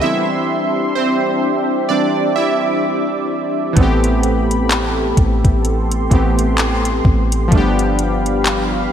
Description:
contemporary R&B; 64 BPM; 4/4; swing 58% on 16ths; A minor; A4 = 441 Hz
warm analog keys; accompaniment; 0.0-8.9 s; E3 to E5; -17 LUFS; right 2 dB; chorus
warm analog pad; sustained chords; 0.0-8.9 s; D4 to D6; -21 LUFS; left 2 dB; chorus
soft 808-style bass; bass; 3.8-8.9 s; G1 to A1; -18 LUFS; equal
smooth R&B drum kit; drums; 3.8-8.7 s; handclaps, hi-hat, kick drum; -16 LUFS; equal; gated reverb
moderate lush hall reverb, RT60 2.5 s; bright 1980s-style digital production; -14 LUFS; side -9 dB against mid
0.0-3.8 A section; 3.8-8.9 A section
synth keys solo 0.0-3.8; break 0.0-3.8
0.0 D9sus4; 3.8 Am9; 7.5 G7
| 0.02 0.95 1.89 2.83 | 3.77 4.71 5.64 6.58 | 7.52 8.46

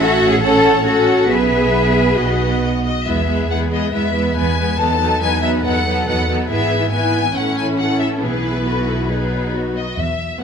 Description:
quick classical-period movement for string orchestra; 139 BPM; 4/4; straight; E major; A4 = 439 Hz
rich chamber violin section; melody; 0.0-10.4 s; B4 to A5; -22 LUFS; left 5 dB
rich studio violin section; second line; 0.0-10.4 s; D#4 to E5; -25 LUFS; left 2 dB
rich studio viola section; accompaniment; 0.0-10.4 s; E3 to A4; -19 LUFS; equal
rich chamber cello section; bass; 0.0-10.0 s; C#4 to B4; -21 LUFS; right 2 dB
rich chamber double bass section; bass; 0.0-10.3 s; G#1 to E2; -21 LUFS; right 2 dB
wet recital hall reverb, RT60 1.8 s; minimal, uncompressed stereo recording; -14 LUFS; side -7 dB against mid
0.0-3.1 A section; 3.1-10.4 B section
0.0 F#m7/A; 1.3 E/B; 2.2 B; 3.1 E; 4.8 B7/E; 6.5 E/G#; 7.4 A; 8.2 E/B; 9.1 B
0.00 0.42 0.85 | 1.30 1.74 2.18 2.62 | 3.06 3.50 3.93 4.36 | 4.79 5.22 5.65 6.08 | 6.50 6.93 7.36 7.79 | 8.22 8.66 9.10 9.54 | 9.97 10.40

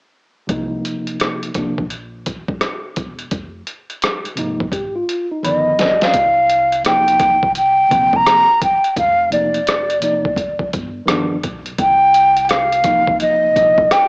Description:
hip hop, jazz-hop; 85 BPM; 4/4; swing 64% on 16ths; A4 = 441 Hz
mellow tine electric piano; accompaniment; 0.5-13.9 s; C3 to B5; -22 LUFS; equal; medium stereo tremolo
upright bass; bass; 0.5-13.8 s; E1 to C2; -33 LUFS; equal
trip hop sampler-style drum kit; drums; 0.5-14.1 s; hi-hat, kick drum, rim click, snare drum; -21 LUFS; equal; overdrive, cassette tape
breathy mellow silver concert flute; melody; 5.4-14.1 s; D5 to Bb5; -12 LUFS; equal; cassette tape
moderate spring reverb, RT60 2.4 s; home recording on cassette, small speaker sound; -13 LUFS; side -31 dB against mid
0.5-6.1 A section; 6.1-14.1 B section
drum fill 4.7-6.1; tine electric piano fill 5.1-6.1
0.5 Cm7; 3.3 Fm7; 5.4 G7b13; 6.1 Cm7; 9.0 Fsus2; 11.1 G7b13; 11.8 Cm7
| 0.49 1.20 1.90 2.61 | 3.31 4.02 4.73 5.43 | 6.14 6.84 7.55 8.26 | 8.96 9.67 10.37 11.08 | 11.79 12.49 13.20 13.90

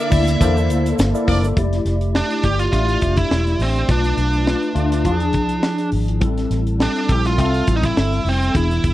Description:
polished 1980s jazz-funk pop; 103 BPM; 4/4; swing 54% on 16ths; F major; A4 = 443 Hz
bluesy overdriven lead guitar; melody; 0.0-8.9 s; C4 to E5; -23 LUFS; right 2 dB; distortion
mellow horn section; second line; 0.0-1.5 s; D4 to D5; -25 LUFS; right 1 dB
mellow tine electric piano; accompaniment; 0.0-8.9 s; E3 to E5; -21 LUFS; left 2 dB; ensemble chorus
phased string machine; sustained chords; 0.0-1.5 s; D3 to A4; -28 LUFS; equal; ensemble chorus, phaser
vintage muted fingered electric bass; bass; 0.1-8.9 s; E1 to E2; -20 LUFS; equal
tight funk drum kit; drums; 0.1-8.9 s; hi-hat, kick drum, snare drum; -21 LUFS; equal
tube shaker; percussion; 0.1-1.6 s; -39 LUFS; right 14 dB
light reverb; dry, close 1970s-style studio recording; -16 LUFS; side -15 dB against mid
0.0-1.6 A section; 1.6-8.9 B section
band accent 0.0-1.6
0.0 C13; 1.6 Fmaj13; 3.9 Bm7b5; 5.1 E7b9; 6.2 Am7
0.41 0.99 | 1.57 2.15 2.73 3.31 | 3.89 4.47 5.06 5.64 | 6.22 6.80 7.38 7.96 | 8.55

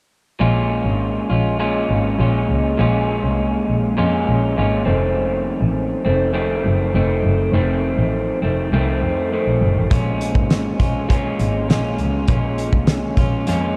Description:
indie pop, bedroom pop; 101 BPM; 4/4; straight; Bb minor; A4 = 441 Hz
electric guitar through a small old amp; accompaniment; 0.4-13.8 s; F2 to F4; -22 LUFS; equal; subtle chorus, warbly pitch drift
clear double bass; bass; 0.4-13.8 s; F1 to F2; -22 LUFS; equal
loose indie drum kit; drums; 9.9-13.6 s; hi-hat, kick drum, snare drum; -22 LUFS; equal
wet huge ambient reverb, RT60 8.2 s; dreamy mix soaked in reverb, cassette tape; -19 LUFS; mono
0.4-13.8 A section
0.4 Bbm7; 4.9 F7; 9.9 Bbm7
| 0.40 1.00 1.59 2.19 | 2.78 3.38 3.97 4.57 | 5.16 5.75 6.35 6.94 | 7.54 8.13 8.72 9.32 | 9.91 10.51 11.10 11.70 | 12.29 12.88 13.48

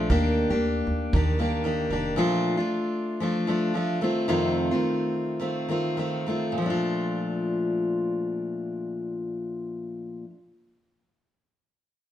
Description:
acoustic pop; 98-116 BPM; 4/4; swing 55% on 16ths; Bb major; A4 = 440 Hz
picked steel-string acoustic guitar; accompaniment; 0.0-10.4 s; F2 to G4; -25 LUFS; left 1 dB
upright bass; bass; 0.0-2.1 s; F1 to Eb2; -27 LUFS; right 1 dB
kick drum; drums; 0.1-1.3 s; -26 LUFS; right 1 dB
moderate stone room reverb, RT60 1.4 s; band playing live in one room; -24 LUFS; side -11 dB against mid
0.0-6.6 A section; 6.6-11.4 B section
slowing down 2.2-6.6
0.1 Ebmaj7; 2.2 Bbmaj7; 4.0 F7; 6.6 Bbmaj7
| 0.10 0.61 1.13 1.65 | 2.17 2.69 3.21 3.74 | 4.28 4.83 5.39 5.97 | 6.57 7.18 7.79 8.40 | 9.01 9.62 10.23

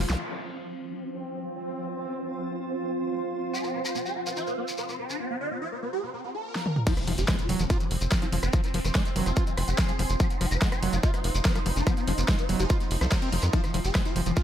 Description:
psychedelic trance; 144 BPM; 4/4; straight; F minor; A4 = 442 Hz
swarming rave lead; melody; 0.0-0.1, 3.5-14.4 s; F3 to C5; -34 LUFS; left 1 dB; chorus, phaser, sidechain pumping, ping-pong delay
bubbling stepped-filter texture; sustained chords; 0.0-14.4 s; F3 to F4; -36 LUFS; right 2 dB; chorus, built-in reverb, vintage 12-bit sampler grit, sidechain pumping
screaming distorted acid line; riff; 0.0, 6.9-14.4 s; F3 to F4; -33 LUFS; moving between left 7 dB and right 6 dB; distortion, chorus, auto-pan, sidechain pumping, ping-pong delay
tight sequencer bass; bass; 0.0-0.2, 7.1-14.3 s; F1 to F2; -27 LUFS; equal
big-room dance drum kit; drums; 0.1-0.3, 6.6-14.4 s; crash cymbal, hi-hat, rim click, snare drum, toms; -32 LUFS; equal; overdrive, low-pass filter on hats, low-pass filter on snare, low-pass filter on cymbals, low-pass filter on toms
shekere; percussion; 0.1-0.2, 3.5-14.4 s; -38 LUFS; left 2 dB
zap and impact; sound effects; 0.1-0.2, 6.9-8.5 s; -38 LUFS; equal
granular cloud pad; texture; 1.5-14.4 s; F4 to Eb6; -37 LUFS; right 2 dB; built-in reverb, sidechain pumping
electronic kick drum; drums; 6.9-14.4 s; -25 LUFS; equal; overdrive
light reverb, digital ambience; -25 LUFS; side -10 dB against mid
0.2-6.9 A section; 6.9-14.4 B section
break 0.0; drum fill 0.0, 6.6-6.9; filter sweep on drum 0.2-6.9; filter sweep on synth texture 0.2-6.9; drop 6.9-14.4; impact 6.9-8.5
0.2 F5
| 0.20 0.62 1.03 1.45 | 1.87 2.28 2.70 3.12 | 3.53 3.95 4.37 4.78 | 5.20 5.62 6.03 6.45 | 6.87 7.28 7.70 8.12 | 8.53 8.95 9.37 9.78 | 10.20 10.62 11.03 11.45 | 11.87 12.28 12.70 13.12 | 13.53 13.95 14.37

